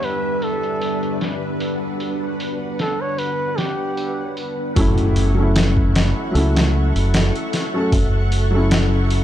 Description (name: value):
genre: trip hop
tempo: 76 BPM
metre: 4/4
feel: swing 54% on 16ths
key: F# phrygian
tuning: A4 = 438 Hz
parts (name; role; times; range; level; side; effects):
- trumpet with bucket mute; melody; 0.0-4.4 s; G4 to C#5; -27 LUFS; right 1 dB; vintage 12-bit sampler grit, dub echo
- felt-muted upright piano; accompaniment; 0.0-9.2 s; E2 to F#5; -23 LUFS; equal; harmonic tremolo, vintage 12-bit sampler grit, tape echo
- string machine, cellos; sustained chords; 0.0-9.2 s; G3 to C#6; -25 LUFS; equal; ensemble chorus
- trip hop sampler-style drum kit; drums; 0.0-9.2 s; hi-hat, kick drum, snare drum; -22 LUFS; equal; low-pass filter on hats, studio reverb, low-pass filter on snare, low-pass filter on kick
- deep dub fingered electric bass; bass; 4.8-9.2 s; F#1 to C#2; -17 LUFS; equal; none
- impact; sound effects; 4.8-7.9 s; none; -26 LUFS; equal; none
room: little or no reverb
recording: dark, warm production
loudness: -17 LUFS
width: side -11 dB against mid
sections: 0.0-4.8 A section; 4.8-9.2 B section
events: filter sweep on felt piano 0.0-4.8; impact 4.8-7.9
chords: 0.0 Em7; 4.8 F#m7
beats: 0.03 0.82 | 1.60 2.40 3.18 3.97 | 4.76 5.55 6.34 7.13 | 7.92 8.71